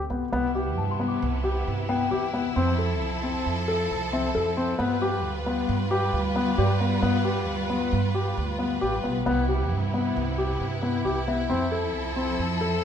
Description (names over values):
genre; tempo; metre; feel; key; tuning
contemporary instrumental, chamber music in an uneven meter; 134 BPM; 5/4; straight; G mixolydian; A4 = 439 Hz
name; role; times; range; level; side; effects
upright bass; bass; 0.0-12.8 s; A1 to G2; -29 LUFS; right 3 dB; none
dark baby grand piano; arpeggios; 0.1-12.8 s; B3 to A4; -26 LUFS; left 4 dB; none
rich studio string section; sustained chords; 0.3-12.8 s; C3 to B4; -30 LUFS; right 2 dB; none
small celesta; texture; 0.8-7.1, 11.3-11.7 s; D5 to D6; -35 LUFS; left 5 dB; none
room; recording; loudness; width
moderate concert hall reverb, RT60 2.5 s; minimal, uncompressed stereo recording; -23 LUFS; side -8 dB against mid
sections
0.3-12.8 A section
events
none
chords
0.0 C69; 2.6 Fmaj7; 4.8 G7; 9.3 Cmaj7; 11.5 Fmaj7